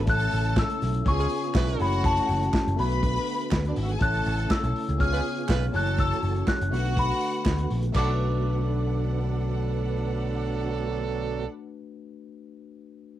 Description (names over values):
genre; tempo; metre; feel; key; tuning
disco; 122 BPM; 4/4; straight; B dorian; A4 = 442 Hz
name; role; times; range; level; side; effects
clear studio string section; second line; 0.0-11.4 s; D4 to B5; -35 LUFS; equal; cassette tape
overdriven tine electric piano; accompaniment; 0.0-13.2 s; A3 to C#5; -34 LUFS; left 9 dB; cassette tape
mellow tonewheel organ; sustained chords; 0.0-11.5 s; C#3 to F#4; -34 LUFS; right 8 dB; chorus vibrato, fast rotary speaker, cassette tape
picked electric bass; bass; 0.0-11.5 s; F#1 to D2; -27 LUFS; equal; none
celesta; melody; 0.1-11.5 s; A5 to F#6; -30 LUFS; left 2 dB; cassette tape
warm soul drum kit; drums; 0.1-8.1 s; crash cymbal, hi-hat, kick drum, snare drum; -28 LUFS; equal; cassette tape
group handclap; percussion; 0.6-8.2 s; none; -39 LUFS; right 10 dB; none
warm horn section; stabs; 1.2-1.9, 5.1-11.5 s; E#3 to B4; -33 LUFS; right 8 dB; cassette tape
room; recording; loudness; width
light reverb; home recording on cassette; -23 LUFS; side -12 dB against mid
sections
0.1-8.0 A section; 8.0-11.9 B section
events
none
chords
0.1 A; 1.1 C#7; 1.8 F#m7; 2.8 Bm7; 4.0 A; 5.0 C#7; 5.7 F#m7; 6.7 Bm7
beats
| 0.08 0.57 1.06 1.55 | 2.04 2.54 3.03 3.52 | 4.01 4.50 5.00 5.49 | 5.98 6.47 6.97 7.46 | 7.95 8.44 8.94 9.43 | 9.92 10.41 10.91 11.40